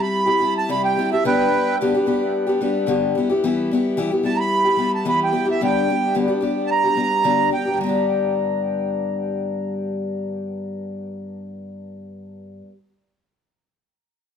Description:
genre	rock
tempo	110 BPM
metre	4/4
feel	straight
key	G major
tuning	A4 = 440 Hz
part	accordion	melody	0.0-7.8 s	B4 to B5	-21 LUFS	right 4 dB	plate reverb, analog delay
part	picked steel-string acoustic guitar	accompaniment	0.0-12.8 s	G2 to G4	-21 LUFS	left 3 dB	none
room	moderate large studio reverb, RT60 0.8 s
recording	dark, warm production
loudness	-18 LUFS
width	side -8 dB against mid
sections	0.0-7.8 A section; 7.8-12.2 B section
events	accordion solo 0.0-7.8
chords	0.0 C; 1.2 G; 3.1 Em; 5.6 G

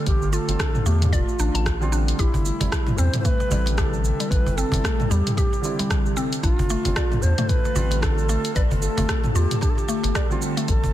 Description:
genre	organic downtempo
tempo	113 BPM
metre	4/4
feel	swing 58% on 16ths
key	unclear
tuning	A4 = 445 Hz
part	low Native American-style wooden flute	melody	0.0-10.9 s	E4 to C5	-29 LUFS	right 1 dB	digital delay
part	felt-muted upright piano	accompaniment	0.0-10.7 s	D3 to F4	-32 LUFS	right 4 dB	sidechain pumping, digital delay
part	airy breathy pad	sustained chords	0.0-10.9 s	C3 to A4	-32 LUFS	equal	chorus, phaser, sidechain pumping
part	mallet-like synth pluck	arpeggios	0.0-10.7 s	G3 to A5	-30 LUFS	left 2 dB	chorus, digital delay
part	round analog bass	bass	0.1-10.9 s	E1 to E2	-22 LUFS	equal	none
part	deep house drum kit	drums	0.1-10.9 s	cabasa, hi-hat, rim click, toms	-28 LUFS	equal	soft clipping on snare
part	electronic kick drum	drums	0.1-10.8 s	none	-24 LUFS	equal	none
part	cajon	percussion	2.3-10.9 s	none	-30 LUFS	right 2 dB	none
room	light reverb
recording	dense, heavily limited modern master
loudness	-19 LUFS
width	side -13 dB against mid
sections	0.0-10.9 A section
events	none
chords	0.0 Dm; 2.2 Am7; 6.4 Dm

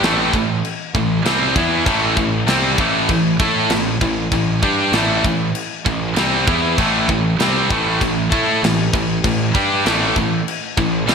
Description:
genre	heavy metal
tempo	98 BPM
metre	4/4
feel	straight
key	A minor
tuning	A4 = 441 Hz
part	heavy high-gain guitar	riff	0.0-11.1 s	A2 to A4	-20 LUFS	right 9 dB	distortion
part	high-gain distorted guitar	riff	0.0-11.1 s	A2 to A4	-22 LUFS	equal	distortion
part	tight distorted guitar	riff	0.0-11.1 s	A2 to A4	-21 LUFS	left 10 dB	distortion
part	fuzz picked electric bass	bass	0.0-11.1 s	A1 to A2	-24 LUFS	equal	overdrive
part	tight metal drum kit	drums	0.0-11.1 s	crash cymbal, kick drum, snare drum	-22 LUFS	left 1 dB	gated reverb
room	moderate lush hall reverb, RT60 1.9 s, small room ambience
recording	bright 1980s-style digital production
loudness	-15 LUFS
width	side -6 dB against mid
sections	0.0-11.1 A section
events	none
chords	0.0 Am

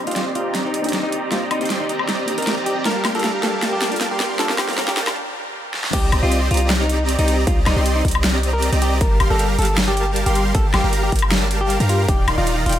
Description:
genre	future bass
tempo	156 BPM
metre	4/4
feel	half-time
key	unclear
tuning	A4 = 439 Hz
part	soft round pluck	accompaniment	0.0-5.2 s	Bb3 to A5	-30 LUFS	left 1 dB	analog chorus, sidechain pumping, dub echo
part	shimmering ambient pad	sustained chords	0.0-5.9 s	Eb3 to G4	-37 LUFS	equal	none
part	supersaw chords	riff	0.0-12.8 s	Eb3 to C6	-22 LUFS	right 1 dB	sidechain pumping, low-pass filter
part	riser	sound effects	1.7-5.2 s	none	-38 LUFS	left 1 dB	none
part	semi-hollow electric guitar	melody	0.1-12.8 s	Eb4 to Bb4	-25 LUFS	left 1 dB	sidechain pumping, dub echo
part	big-room dance drum kit	drums	0.1-12.8 s	crash cymbal, hi-hat, snare drum, woodblock	-23 LUFS	left 1 dB	none
part	warm 808-style bass	bass	5.9-12.8 s	Eb1 to G2	-20 LUFS	equal	sidechain pumping
part	electronic kick drum	drums	5.9-12.2 s	none	-20 LUFS	equal	none
room	light reverb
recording	high-pass filter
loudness	-16 LUFS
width	side -11 dB against mid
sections	0.0-5.9 A section; 5.9-12.8 B section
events	build-up 0.0-5.9; drum fill 0.0-5.2, 5.7; filter sweep on supersaw synth 0.0-5.9; filter sweep 0.0-5.9; break 5.2-5.9; drop 5.9-12.8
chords	0.0 Cm7; 2.9 Gm7; 5.9 Cm7; 9.0 Gm7; 12.1 Ebmaj7

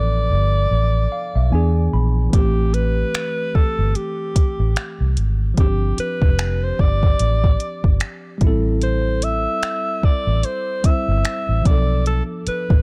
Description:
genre	contemporary R&B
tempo	74 BPM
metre	4/4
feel	swing 58% on 16ths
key	A minor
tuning	A4 = 440 Hz
part	breathy alto saxophone	melody	0.0-12.8 s	G4 to E5	-26 LUFS	equal	none
part	mellow tine electric piano	accompaniment	0.0-12.8 s	E3 to B5	-29 LUFS	equal	none
part	vintage muted fingered electric bass	bass	0.0-12.8 s	F1 to E2	-21 LUFS	equal	none
part	smooth R&B drum kit	drums	2.3-12.8 s	finger snaps, hi-hat, kick drum	-19 LUFS	equal	none
room	little or no reverb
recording	dark, warm production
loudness	-19 LUFS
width	mono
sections	0.0-12.8 A section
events	tine electric piano fill 0.7-2.3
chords	0.0 Bm7b5; 1.5 E7; 2.3 Am7; 5.6 G7sus4; 8.4 Am7; 11.7 Bm7b5

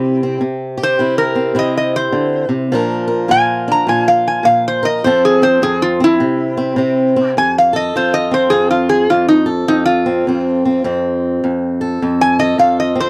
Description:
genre	acoustic country blues, solo or duo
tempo	104 BPM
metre	4/4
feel	swing 64% on 8ths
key	F major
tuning	A4 = 440 Hz
part	metal-body resonator slide guitar	melody	0.0-13.1 s	Eb4 to Bb5	-16 LUFS	equal	none
part	fingerpicked swing-style acoustic guitar	accompaniment	0.0-13.1 s	F2 to Bb4	-18 LUFS	equal	none
room	moderate booth ambience, RT60 0.2 s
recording	dry, close 1970s-style studio recording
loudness	-15 LUFS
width	mono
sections	0.0-7.4 A section; 7.4-13.1 A section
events	resonator guitar played with a steel bar solo 0.0-13.1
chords	0.0 C; 2.7 Bb; 5.0 F; 6.2 N.C.; 7.4 F

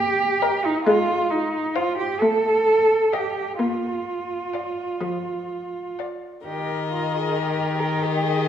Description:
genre	classical, slow romantic movement for string quartet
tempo	41-46 BPM (dotted quarters)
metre	6/8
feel	rubato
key	Eb major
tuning	A4 = 445 Hz
part	muted viola	accompaniment	0.0-8.5 s	Eb3 to Bb3	-24 LUFS	left 2 dB	none
part	muted cello	bass	0.0-8.5 s	Eb4 to Bb4	-22 LUFS	right 2 dB	none
part	muted violin	melody	0.4-8.5 s	Eb5 to F5	-33 LUFS	left 9 dB	none
part	muted violin	second line	0.4-8.5 s	G4 to Eb5	-29 LUFS	left 5 dB	none
room	wet concert hall reverb, RT60 1.7 s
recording	small room ambience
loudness	-20 LUFS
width	side -9 dB against mid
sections	0.0-8.5 A section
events	none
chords	0.0 Eb; 0.9 Fm/Ab; 2.2 F7/A; 3.6 Bb; 6.5 Eb

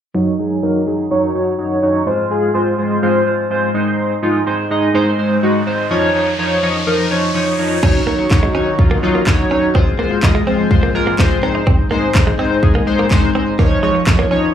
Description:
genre	dance-pop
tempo	125 BPM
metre	4/4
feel	straight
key	Eb dorian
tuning	A4 = 440 Hz
part	chorused polysynth	accompaniment	0.1-14.5 s	F3 to Eb5	-15 LUFS	equal	tremolo, sidechain pumping, low-pass filter, slapback echo
part	riser	sound effects	4.6-7.8 s	none	-26 LUFS	equal	none
part	airy breathy pad	sustained chords	8.1-14.5 s	Eb3 to Ab4	-23 LUFS	left 1 dB	chorus, sidechain pumping
part	direct-recorded clean electric guitar	riff	7.8-14.4 s	Ab3 to Eb4	-22 LUFS	right 3 dB	wide subtle chorus, slapback echo
part	house drum kit	drums	7.8-14.2 s	crash cymbal, handclaps, kick drum, snare drum	-14 LUFS	equal	none
room	moderate club reverb, RT60 0.5 s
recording	live gig heard through the venue's PA, club reverb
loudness	-13 LUFS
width	side -9 dB against mid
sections	0.1-7.8 A section; 7.8-14.5 B section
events	filter sweep on analog polysynth 0.1-7.8; riser 4.6-7.8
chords	0.1 Ebm7; 2.1 Fm; 3.7 Ab; 5.9 Dbadd9; 7.8 Ebm7; 9.7 Fm; 11.4 Ab; 13.6 Dbadd9

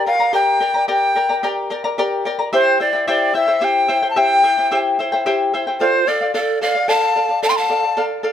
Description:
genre	andean folk, Andean ensemble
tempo	74 BPM (dotted quarters)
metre	6/8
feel	straight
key	unclear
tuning	A4 = 444 Hz
part	breathy bright large quena	melody	0.0-8.0 s	C5 to C6	-16 LUFS	left 1 dB	none
part	charango	accompaniment	0.0-8.3 s	E4 to Bb5	-19 LUFS	left 2 dB	none
part	breathy pan flute	second line	5.8-8.0 s	F4 to G5	-23 LUFS	right 5 dB	none
room	light reverb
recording	close, detailed microphones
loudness	-15 LUFS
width	side -9 dB against mid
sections	0.0-8.3 A section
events	none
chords	0.0 Gm; 2.5 C; 5.8 Dm

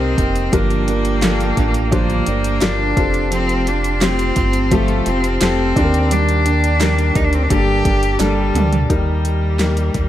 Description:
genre	piano-driven pop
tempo	86 BPM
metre	4/4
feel	straight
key	G minor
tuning	A4 = 440 Hz
part	bright cello	melody	0.0-10.1 s	G3 to G4	-20 LUFS	equal	dub echo
part	warm baby grand piano	accompaniment	0.0-10.1 s	G2 to C5	-22 LUFS	left 4 dB	dub echo
part	tonewheel organ	sustained chords	0.0-10.1 s	Bb3 to Eb6	-30 LUFS	equal	slow rotary speaker
part	picked steel-string acoustic guitar	riff	0.0-8.9 s	G2 to A4	-24 LUFS	right 6 dB	dub echo
part	round analog bass	bass	0.0-10.1 s	F1 to Eb2	-19 LUFS	equal	none
part	deep house drum kit	drums	0.2-10.1 s	handclaps, hi-hat, kick drum, snare drum, toms	-20 LUFS	right 1 dB	overdrive
part	group handclap	percussion	1.2-8.4 s	none	-32 LUFS	right 6 dB	none
room	light reverb, small room ambience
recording	echo-heavy mix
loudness	-14 LUFS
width	side -12 dB against mid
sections	0.0-8.9 A section; 8.9-10.1 B section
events	drum fill 8.2-8.9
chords	0.0 Cm7; 0.5 Gm7; 3.0 Fadd9; 5.8 Ebmaj7; 7.5 Gmadd9; 8.9 Eb

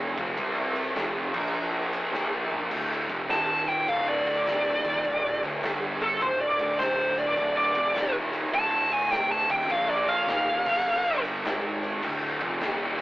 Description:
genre	stoner and doom metal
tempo	103 BPM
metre	4/4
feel	swing 65% on 8ths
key	D phrygian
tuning	A4 = 440 Hz
part	thick fuzz guitar	riff	0.0-13.0 s	D2 to C4	-33 LUFS	left 2 dB	distortion
part	thick fuzz guitar	riff	0.0-13.0 s	D2 to C4	-33 LUFS	right 2 dB	distortion
part	fuzz picked electric bass	bass	0.0-13.0 s	D1 to C2	-33 LUFS	equal	overdrive
part	oversized low-tuned drum kit	drums	0.2-13.0 s	crash cymbal, kick drum, ride cymbal, snare drum, toms	-32 LUFS	equal	none
part	fuzz lead guitar	melody	3.3-11.2 s	A4 to A5	-24 LUFS	equal	wah, distortion
room	moderate studio reverb, RT60 0.6 s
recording	rough rehearsal-room recording, warm saturation, telephone sound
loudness	-24 LUFS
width	side -18 dB against mid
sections	0.0-2.7 A section; 2.7-13.0 B section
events	drum fill 2.1-2.7; lead electric guitar solo 2.7-13.0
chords	0.4 C5; 1.0 F5; 1.2 Bb5; 2.7 Dm; 3.3 Eb5; 3.9 D5; 5.6 G5; 6.2 Dm; 8.0 Eb5; 8.5 D5; 9.7 Bb5; 10.3 Ebsus2; 10.6 G5; 11.4 G#5; 12.0 Dm

